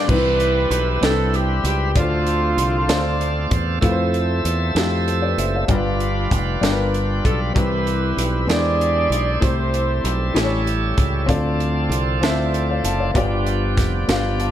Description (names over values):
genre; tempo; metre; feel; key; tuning
slow gospel; 64 BPM (dotted quarters); 6/8; straight; C major; A4 = 440 Hz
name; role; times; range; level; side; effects
dark saxophone section; melody; 0.0-3.5, 7.3-10.3 s; A3 to D5; -22 LUFS; right 2 dB; none
dark upright piano; accompaniment; 0.0-14.5 s; G2 to A5; -24 LUFS; left 3 dB; none
bright tonewheel organ; sustained chords; 0.0-14.5 s; F3 to E5; -26 LUFS; right 3 dB; slow rotary speaker, overdrive
fingered electric bass; bass; 0.1-14.5 s; F1 to F2; -22 LUFS; equal; none
crisp fusion drum kit; drums; 0.1-14.5 s; crash cymbal, hi-hat, kick drum, snare drum; -23 LUFS; right 1 dB; none
room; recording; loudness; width
light reverb, studio reverb; none; -17 LUFS; side -11 dB against mid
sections
0.1-14.5 A section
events
none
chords
0.1 Cmaj7; 2.0 Dm7; 3.8 Fmaj7; 5.7 G7; 7.6 Cmaj7; 8.5 E7alt; 9.4 Am7/C; 10.4 A7; 11.3 Dm7; 13.2 G7